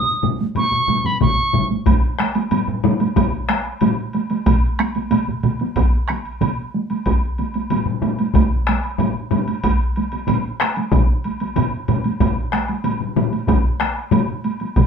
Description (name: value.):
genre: japanese traditional, taiko drum ensemble.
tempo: 93 BPM.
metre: 4/4.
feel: straight.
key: unclear.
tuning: A4 = 436 Hz.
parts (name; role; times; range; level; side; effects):
bright piccolo; melody; 0.0-1.7 s; B5 to D#6; -19 LUFS; right 1 dB; none.
taiko ensemble; percussion; 0.2-14.9 s; none; -22 LUFS; right 3 dB; none.
taiko ensemble; percussion; 0.2-14.3 s; none; -21 LUFS; left 4 dB; none.
taiko ensemble; percussion; 0.2-14.9 s; none; -23 LUFS; right 2 dB; none.
woodblock; percussion; 0.6-14.9 s; none; -29 LUFS; right 4 dB; none.
taiko ensemble; percussion; 1.2-14.9 s; none; -19 LUFS; equal; none.
room: wet studio reverb, RT60 0.6 s.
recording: band playing live in one room.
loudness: -17 LUFS.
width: side -6 dB against mid.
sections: 0.0-1.9 A section; 1.9-14.9 B section.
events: none.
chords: none.